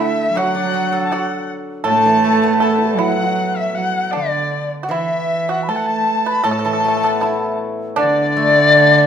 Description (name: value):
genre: chinese traditional, Chinese chamber ensemble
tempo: 79 BPM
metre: 2/4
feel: rubato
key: D gong mode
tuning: A4 = 440 Hz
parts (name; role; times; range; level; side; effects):
- reedy large dizi; melody; 0.0-9.1 s; D4 to B5; -17 LUFS; left 2 dB; none
- clear erhu; second line; 0.0-9.1 s; D5 to A5; -22 LUFS; left 5 dB; none
- pipa; second line; 0.0-9.1 s; D4 to B4; -24 LUFS; right 6 dB; none
- warm cello; second line; 0.0-9.1 s; D3 to A3; -21 LUFS; right 6 dB; none
- steel-string zither; accompaniment; 0.0-9.1 s; A2 to D5; -22 LUFS; left 2 dB; none
room: moderate recital hall reverb, RT60 1.7 s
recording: minimal, uncompressed stereo recording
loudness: -14 LUFS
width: side -8 dB against mid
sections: 0.0-9.1 A section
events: none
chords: none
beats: | 0.35 1.11 | 1.86 2.61 | 3.36 4.13 | 4.90 5.68 | 6.46 7.22 | 7.99 8.74